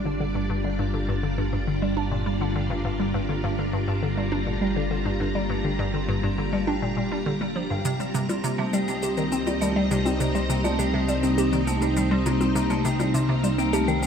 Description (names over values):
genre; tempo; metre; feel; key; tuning
ambient, sequencer-driven space music; 102 BPM; 4/4; straight; G minor; A4 = 440 Hz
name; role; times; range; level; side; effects
string machine, full ensemble; sustained chords; 0.0-14.1 s; G3 to Bb5; -27 LUFS; equal; ensemble chorus
vibraphone with hard mallets; arpeggios; 0.0-14.1 s; G3 to G4; -32 LUFS; moving between left 6 dB and right 2 dB; auto-pan, analog delay
hollow square pluck; riff; 0.0-14.1 s; G2 to G4; -27 LUFS; equal; chorus, analog delay
analog drone; bass; 0.0-14.1 s; G1 to C2; -29 LUFS; equal; chorus
shaker and congas; percussion; 7.8-14.1 s; none; -34 LUFS; left 2 dB; analog delay
room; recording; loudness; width
moderate plate reverb, RT60 2.6 s; none; -22 LUFS; side -7 dB against mid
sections
0.0-14.1 A section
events
fade-in on vibraphone 0.0-14.1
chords
0.0 Gm7; 7.9 Cm7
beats
0.20 | 0.79 1.38 1.97 2.56 | 3.15 3.73 4.32 4.91 | 5.50 6.09 6.67 7.26 | 7.85 8.44 9.03 9.62 | 10.20 10.79 11.38 11.97 | 12.56 13.14 13.73